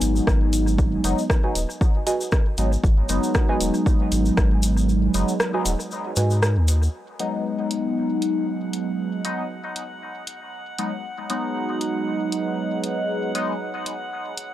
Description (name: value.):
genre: dub techno.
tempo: 117 BPM.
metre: 4/4.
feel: swing 55% on 16ths.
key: G# minor.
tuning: A4 = 440 Hz.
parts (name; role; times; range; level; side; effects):
resonant sweep polysynth; stabs; 0.0-13.5 s; F#3 to D#4; -24 LUFS; equal; chorus, phaser, sidechain pumping, dub echo.
warm sub bass; bass; 0.0-6.9 s; D#1 to G#2; -21 LUFS; equal; sidechain pumping.
punchy analog drum machine; drums; 0.0-14.5 s; hi-hat, rim click; -27 LUFS; equal; dub echo.
tube shaker; percussion; 0.0-6.9 s; none; -33 LUFS; left 2 dB; none.
electronic kick drum; drums; 0.3-4.5 s; none; -20 LUFS; equal; none.
warbly dusty pluck; riff; 1.4-6.3 s; F#4 to G#5; -30 LUFS; right 3 dB; chorus, cassette tape, sidechain pumping, dub echo.
drifting glass-harmonics texture; texture; 7.7-14.5 s; F#5; -36 LUFS; left 1 dB; chorus, built-in reverb, sidechain pumping.
room: digital ambience.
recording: dry, gritty hardware recording, transformer saturation.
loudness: -20 LUFS.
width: side -13 dB against mid.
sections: 0.0-6.9 A section; 6.9-14.5 B section.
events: filter sweep on analog polysynth 0.0-6.9; kick drops out 4.9-6.9.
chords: 0.0 G#m7.